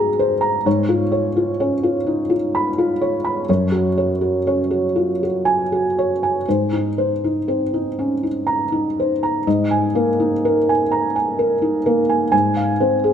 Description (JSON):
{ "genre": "neoclassical minimalist piano", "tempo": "40-43 BPM (dotted quarters)", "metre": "6/8", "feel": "rubato", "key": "Ab mixolydian, Ab major from 9.5 s", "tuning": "A4 = 439 Hz", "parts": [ { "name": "felt-muted upright piano", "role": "solo", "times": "0.0-13.1 s", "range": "Gb2 to Cb6", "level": "-16 LUFS", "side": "equal", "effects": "none" } ], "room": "moderate scoring stage reverb, RT60 1.5 s", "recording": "none", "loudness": "-16 LUFS", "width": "side -8 dB against mid", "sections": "0.0-9.5 A section; 9.5-13.1 B section", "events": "none", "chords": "0.0 Abadd9; 0.7 Db7/Ab; 3.5 Gbsus2; 6.4 Abadd9; 9.5 Absus2; 12.3 Fm/Ab", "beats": "| 0.66 2.06 | 3.48 4.95 | 6.45 7.96 | 9.45 10.89 | 12.32" }